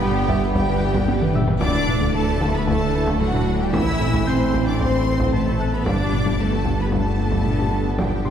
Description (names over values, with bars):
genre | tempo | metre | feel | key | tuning
cinematic, hybrid orchestral and electronic film score | 113 BPM | 4/4 | straight | unclear | A4 = 437 Hz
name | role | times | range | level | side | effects
rich studio violin section | melody | 0.0-8.3 s | F#5 to E6 | -30 LUFS | left 2 dB | none
rich symphonic violin section | second line | 0.0-8.3 s | F#4 to E5 | -30 LUFS | left 2 dB | none
rich studio viola section | accompaniment | 0.0-8.3 s | E3 to B4 | -30 LUFS | right 2 dB | none
clear trombone section | sustained chords | 0.0-8.3 s | D3 to C4 | -30 LUFS | right 2 dB | none
dark French horn section | sustained chords | 0.0-8.3 s | F#3 to E4 | -29 LUFS | left 2 dB | none
clear symphonic cello section | bass | 0.0-8.3 s | F#3 to E4 | -28 LUFS | right 2 dB | none
mellow tuba | bass | 0.0-8.3 s | G1 to D2 | -27 LUFS | right 1 dB | none
warm sub bass | bass | 0.0-8.3 s | D1 to A1 | -28 LUFS | equal | none
warm symphonic double bass section | bass | 0.0-8.3 s | G1 to D2 | -26 LUFS | equal | none
taiko ensemble | drums | 0.0-8.3 s | none | -25 LUFS | equal | none
bright grand piano | texture | 0.0-8.3 s | G4 to G6 | -36 LUFS | left 1 dB | ping-pong delay
tight sequenced synth | arpeggios | 0.1-8.3 s | D3 to A4 | -29 LUFS | left 1 dB | none
room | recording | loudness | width
wet scoring stage reverb, RT60 1.7 s | heard from further back in the room | -18 LUFS | side -9 dB against mid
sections
0.0-8.3 A section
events
drum fill 1.1-1.6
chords
0.0 G; 1.6 Dsus2; 3.7 Am; 5.9 G